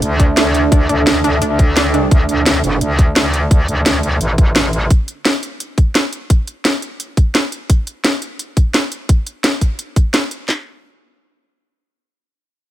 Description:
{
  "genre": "dark technical drum and bass",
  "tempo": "172 BPM",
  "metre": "4/4",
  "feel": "straight",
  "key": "unclear",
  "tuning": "A4 = 438 Hz",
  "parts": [
    { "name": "dark analog pad", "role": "sustained chords", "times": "0.0-4.9 s", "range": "D4 to E5", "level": "-21 LUFS", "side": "right 3 dB", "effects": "chorus, sidechain pumping" },
    { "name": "metallic wobble bass", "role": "bass", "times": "0.0-4.9 s", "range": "F1 to D2", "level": "-16 LUFS", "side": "equal", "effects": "chorus, overdrive" },
    { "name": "drum and bass drum kit", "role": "drums", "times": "0.0-10.4 s", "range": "hi-hat, snare drum", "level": "-16 LUFS", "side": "equal", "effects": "none" },
    { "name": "wide unison pluck", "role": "arpeggios", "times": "0.2-2.0 s", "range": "D4", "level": "-21 LUFS", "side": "left 1 dB", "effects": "sidechain pumping, tape echo" },
    { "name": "drum and bass drum kit", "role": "drums", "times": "0.2-10.6 s", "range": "handclaps, kick drum, snare drum", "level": "-12 LUFS", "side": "equal", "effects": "none" }
  ],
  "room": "little or no reverb",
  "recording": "none",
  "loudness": "-13 LUFS",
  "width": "side -13 dB against mid",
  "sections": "0.0-10.5 A section; 10.5-12.7 B section",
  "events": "none",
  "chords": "0.0 Dsus2; 10.5 N.C.",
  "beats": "0.02 0.37 | 0.72 1.07 1.42 1.76 | 2.11 2.46 2.81 3.16 | 3.51 3.86 4.21 4.56 | 4.91 5.25 5.60 5.95 | 6.30 6.65 7.00 7.35 | 7.70 8.04 8.39 8.74 | 9.09 9.44 9.79 10.14 | 10.49"
}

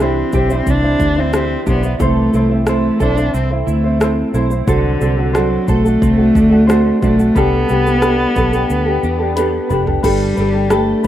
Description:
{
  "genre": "acoustic pop",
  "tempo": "90 BPM",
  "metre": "4/4",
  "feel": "straight",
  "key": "unclear",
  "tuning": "A4 = 440 Hz",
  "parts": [
    { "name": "warm cello", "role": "melody", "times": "0.0-11.1 s", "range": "D3 to D4", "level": "-16 LUFS", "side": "equal", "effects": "none" },
    { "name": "ukulele", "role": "accompaniment", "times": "0.0-11.1 s", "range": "C4 to C5", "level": "-18 LUFS", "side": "equal", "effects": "none" },
    { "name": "direct-recorded clean electric guitar", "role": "arpeggios", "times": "0.0-11.1 s", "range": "E3 to A4", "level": "-24 LUFS", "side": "right 5 dB", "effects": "ensemble chorus" },
    { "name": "vintage muted fingered electric bass", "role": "bass", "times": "0.0-11.1 s", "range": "F1 to E2", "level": "-18 LUFS", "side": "equal", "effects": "none" },
    { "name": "minimal click drum kit", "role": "drums", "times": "0.3-11.1 s", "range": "crash cymbal, kick drum, rim click, shaker, snare drum, toms", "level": "-21 LUFS", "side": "equal", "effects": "none" }
  ],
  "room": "little or no reverb",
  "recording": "none",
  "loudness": "-12 LUFS",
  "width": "side -12 dB against mid",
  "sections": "0.0-10.0 A section; 10.0-11.1 B section",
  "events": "drum fill 9.4-10.0",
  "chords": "0.0 Cadd9; 2.0 Am; 4.7 D7; 7.4 Gadd9",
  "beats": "0.00 0.67 1.34 | 2.00 2.67 3.34 4.01 | 4.68 5.35 6.02 6.69 | 7.36 8.03 8.70 9.37 | 10.04 10.71"
}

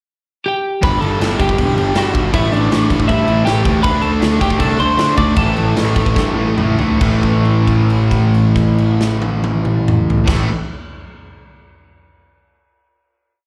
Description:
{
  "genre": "punk rock",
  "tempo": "136-160 BPM",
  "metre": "4/4",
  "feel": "straight",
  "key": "unclear",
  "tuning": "A4 = 440 Hz",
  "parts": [
    { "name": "lightly driven lead guitar", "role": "melody", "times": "0.5-6.6 s", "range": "D4 to D6", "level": "-21 LUFS", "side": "equal", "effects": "slapback echo" },
    { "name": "biting overdriven guitar", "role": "riff", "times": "0.8-10.5 s", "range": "G2 to D4", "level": "-24 LUFS", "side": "equal", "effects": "none" },
    { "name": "overdriven semi-hollow guitar", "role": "riff", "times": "0.8-10.5 s", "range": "G2 to D4", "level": "-24 LUFS", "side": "equal", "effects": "slapback echo" },
    { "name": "sludgy distorted guitar", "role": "riff", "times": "0.8-10.5 s", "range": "G2 to D4", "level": "-26 LUFS", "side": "equal", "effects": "overdrive" },
    { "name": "fuzz picked electric bass", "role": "bass", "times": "0.8-10.5 s", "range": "E1 to D3", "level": "-19 LUFS", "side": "equal", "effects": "overdrive" },
    { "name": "big rock drum kit", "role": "drums", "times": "0.8-10.4 s", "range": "crash cymbal, kick drum, snare drum, toms", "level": "-22 LUFS", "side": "equal", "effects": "none" }
  ],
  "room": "little or no reverb",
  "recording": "live gig heard through the venue's PA, club reverb",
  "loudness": "-15 LUFS",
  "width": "mono",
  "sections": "0.0-0.8 pickup bar; 0.8-7.0 riff; 7.0-10.5 final chord",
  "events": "slowing down 3.8-7.0; drum fill 6.2-7.0; held note 7.0-10.3",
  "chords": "0.0 N.C.; 0.8 G; 2.3 A5; 3.8 D5; 5.4 A5",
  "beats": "0.07 0.45 | 0.82 1.20 1.57 1.95 | 2.33 2.70 3.08 3.45 | 3.83 4.21 4.58 4.97 | 5.36 5.76 6.16 6.58 | 7.01 7.45 7.89 8.33 | 8.77 9.21 9.65 10.09"
}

